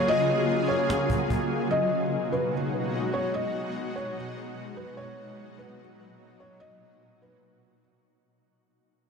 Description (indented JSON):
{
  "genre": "hip hop, atmospheric cloud-rap",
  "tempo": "147 BPM",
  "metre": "4/4",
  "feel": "half-time",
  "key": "unclear",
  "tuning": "A4 = 441 Hz",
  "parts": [
    { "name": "felt-muted upright piano", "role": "melody", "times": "0.0-7.8 s", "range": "B4 to D#5", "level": "-29 LUFS", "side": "left 1 dB", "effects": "ping-pong delay" },
    { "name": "shimmering ambient pad", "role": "sustained chords", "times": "0.0-8.2 s", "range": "A#2 to G#4", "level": "-28 LUFS", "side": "equal", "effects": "chorus, built-in reverb" },
    { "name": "cajon", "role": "drums", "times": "0.1-1.4 s", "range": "none", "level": "-30 LUFS", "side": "equal", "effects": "none" }
  ],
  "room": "light reverb, small room ambience",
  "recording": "dark, warm production",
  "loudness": "-24 LUFS",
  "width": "side -5 dB against mid",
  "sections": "0.0-8.2 A section",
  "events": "fade-out 0.0-8.2",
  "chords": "0.0 F#maj7; 1.7 G#m7; 5.0 Bmaj7",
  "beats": "| 0.08 0.48 0.89 1.30 | 1.71 2.12 2.53 2.93 | 3.34 3.75 4.16 4.57 | 4.97 5.38 5.79 6.20 | 6.61 7.02 7.42 7.83"
}